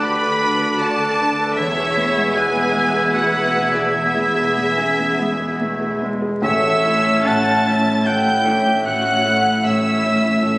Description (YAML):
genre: cinematic, emotional film score for orchestra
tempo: 74 BPM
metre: 3/4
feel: uneven beats, rubato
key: unclear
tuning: A4 = 439 Hz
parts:
  - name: clear symphonic violin section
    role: melody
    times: 0.0-10.6 s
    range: D5 to A6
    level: -23 LUFS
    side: equal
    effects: none
  - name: bright oboe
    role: second line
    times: 0.0-10.6 s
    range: D5 to A5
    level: -22 LUFS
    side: right 1 dB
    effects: none
  - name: silver concert flute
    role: second line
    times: 0.0-10.6 s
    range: E5 to G#6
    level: -23 LUFS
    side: equal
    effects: none
  - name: warm clarinet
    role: second line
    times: 0.0-10.6 s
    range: G#3 to F#5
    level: -26 LUFS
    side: equal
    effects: none
  - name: warm symphonic violin section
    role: second line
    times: 0.0-10.6 s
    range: D4 to A5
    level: -32 LUFS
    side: equal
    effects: none
  - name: dark concert grand piano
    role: accompaniment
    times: 0.0-10.6 s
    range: A1 to A4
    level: -23 LUFS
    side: equal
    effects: none
  - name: warm symphonic viola section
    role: accompaniment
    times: 0.0-10.6 s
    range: C#4 to D5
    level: -27 LUFS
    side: equal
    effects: none
  - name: dark French horn section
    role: sustained chords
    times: 0.0-10.6 s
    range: A3 to C#5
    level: -26 LUFS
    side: equal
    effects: none
  - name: rich symphonic cello section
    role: bass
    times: 0.0-10.6 s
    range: E2 to D3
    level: -27 LUFS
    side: equal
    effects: none
  - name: warm symphonic double bass section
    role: bass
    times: 0.0-10.6 s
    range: E1 to D2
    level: -34 LUFS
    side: equal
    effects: none
  - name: timpani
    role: percussion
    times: 6.4-7.6 s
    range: A2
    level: -31 LUFS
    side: equal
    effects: none
room: moderate concert hall reverb, RT60 2.4 s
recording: recorded on a phone in the room, studio reverb, vinyl crackle, compression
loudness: -15 LUFS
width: side -22 dB against mid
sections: 0.0-6.4 A section; 6.4-10.6 B section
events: none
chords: 0.0 D; 1.6 E; 6.4 A